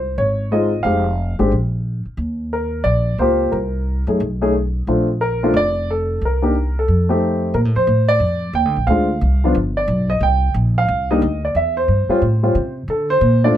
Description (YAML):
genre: jazz piano trio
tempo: 180 BPM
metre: 4/4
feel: swing 62% on 8ths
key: Bb major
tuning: A4 = 441 Hz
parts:
  - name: warm baby grand piano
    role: melody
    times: 0.0-13.6 s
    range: F3 to G5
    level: -18 LUFS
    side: equal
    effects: none
  - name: upright bass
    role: bass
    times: 0.0-13.6 s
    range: F1 to D3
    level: -19 LUFS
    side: equal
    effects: none
room: light reverb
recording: none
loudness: -16 LUFS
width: side -11 dB against mid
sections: 0.0-7.5 A section; 7.5-13.6 B section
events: none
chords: 0.0 Dbmaj9; 0.8 Fm9; 1.5 N.C.; 2.2 Eb69; 3.5 C7(no3); 4.2 N.C.; 4.9 Bbmaj7; 6.2 C7(no3); 6.9 F7; 7.5 Bbmaj9; 8.9 Dm7b5; 9.5 G; 10.2 Cm7; 11.5 C/E; 12.2 Am; 12.9 D7(no3)